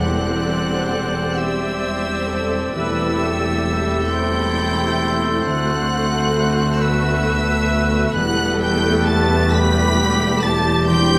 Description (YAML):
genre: cinematic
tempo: 44 BPM (dotted quarters)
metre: 6/8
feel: rubato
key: unclear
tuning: A4 = 440 Hz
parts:
  - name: rich studio violin section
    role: melody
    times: 0.0-11.2 s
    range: E6 to B6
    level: -28 LUFS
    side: equal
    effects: none
  - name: bright clarinet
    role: second line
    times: 0.0-11.2 s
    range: G4 to C5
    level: -29 LUFS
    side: equal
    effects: none
  - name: rich studio violin section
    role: second line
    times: 0.0-11.2 s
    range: E5 to B5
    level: -31 LUFS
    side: equal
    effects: none
  - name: warm oboe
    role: second line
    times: 0.0-11.2 s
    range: B4 to D5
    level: -29 LUFS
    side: equal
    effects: none
  - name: rich studio viola section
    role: accompaniment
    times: 0.0-11.2 s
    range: G3 to C5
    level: -28 LUFS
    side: equal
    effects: none
  - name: dark French horn section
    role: sustained chords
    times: 0.0-11.2 s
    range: G3 to D4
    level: -28 LUFS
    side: equal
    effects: none
  - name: concert harp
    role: arpeggios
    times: 0.0-11.2 s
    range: D3 to B5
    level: -28 LUFS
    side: equal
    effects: none
  - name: rich studio cello section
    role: bass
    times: 0.0-11.2 s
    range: D2 to E2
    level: -28 LUFS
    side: equal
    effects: none
  - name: rich studio double bass section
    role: bass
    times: 0.0-11.2 s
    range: E1 to D2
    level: -26 LUFS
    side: equal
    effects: none
room: moderate scoring stage reverb, RT60 1.8 s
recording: none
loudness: -19 LUFS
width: mono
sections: 0.0-11.2 A section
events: none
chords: 0.0 Cadd9/E; 2.7 Am7/E; 5.5 D6; 8.2 Em